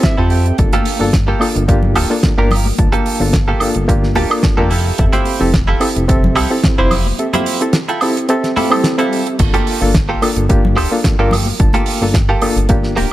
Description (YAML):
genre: nu-disco, nu disco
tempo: 109 BPM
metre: 4/4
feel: swing 53% on 16ths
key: G dorian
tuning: A4 = 438 Hz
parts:
  - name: barky reed electric piano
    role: accompaniment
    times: 0.0-13.1 s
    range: Bb3 to A5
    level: -18 LUFS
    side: equal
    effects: overdrive, fast tremolo, tape echo
  - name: direct-recorded clean electric guitar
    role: riff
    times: 0.0-13.1 s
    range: Bb3 to G5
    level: -20 LUFS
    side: right 2 dB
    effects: lush chorus, tape echo
  - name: damped 70s drum kit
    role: drums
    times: 0.0-13.1 s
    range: crash cymbal, hi-hat, snare drum, woodblock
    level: -19 LUFS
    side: right 1 dB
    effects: none
  - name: electronic kick drum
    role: drums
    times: 0.0-12.8 s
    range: none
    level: -16 LUFS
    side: equal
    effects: none
  - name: chorused synth bass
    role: bass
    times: 0.2-13.1 s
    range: D1 to F2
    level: -17 LUFS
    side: equal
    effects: tube saturation, sidechain pumping
  - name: congas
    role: percussion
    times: 0.7-13.1 s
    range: none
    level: -24 LUFS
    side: left 3 dB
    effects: none
  - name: swell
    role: sound effects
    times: 8.5-9.4 s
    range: none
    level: -27 LUFS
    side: left 2 dB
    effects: none
room: small room ambience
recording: none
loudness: -12 LUFS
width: side -15 dB against mid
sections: 0.0-13.1 A section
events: clean electric guitar fill 0.0-0.6; kick drops out 7.2-9.4; swell 8.5-9.4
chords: 0.0 Fmaj9; 0.6 Gm9; 4.7 Fmaj9; 9.4 Gm9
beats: 0.03 | 0.58 1.14 1.69 2.24 | 2.79 3.34 3.89 4.44 | 4.99 5.54 6.09 6.64 | 7.19 7.74 8.29 8.84 | 9.39 9.94 10.49 11.04 | 11.59 12.14 12.69